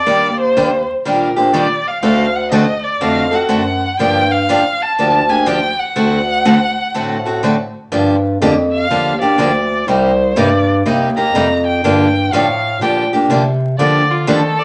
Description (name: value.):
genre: acoustic string swing (jazz manouche).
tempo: 122 BPM.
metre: 4/4.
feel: swing 64% on 8ths.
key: G minor.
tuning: A4 = 440 Hz.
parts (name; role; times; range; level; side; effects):
warm violin; melody; 0.0-14.6 s; F4 to Bb5; -19 LUFS; equal; none.
picked steel-string acoustic guitar; accompaniment; 0.1-14.4 s; C3 to A4; -18 LUFS; equal; none.
mellow bass clarinet; bass; 0.1-14.6 s; C2 to Eb3; -20 LUFS; equal; none.
room: wet studio reverb, RT60 0.8 s.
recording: vinyl crackle, nothing above 10.5 kHz.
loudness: -15 LUFS.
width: mono.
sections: 0.0-7.9 A section; 7.9-14.6 B section.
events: violin solo 7.9-14.6.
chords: 0.1 Ebmaj7; 2.0 D7#9; 4.0 Gm7; 6.0 D7; 7.9 Gm7; 9.9 Cm7; 11.8 Gm7.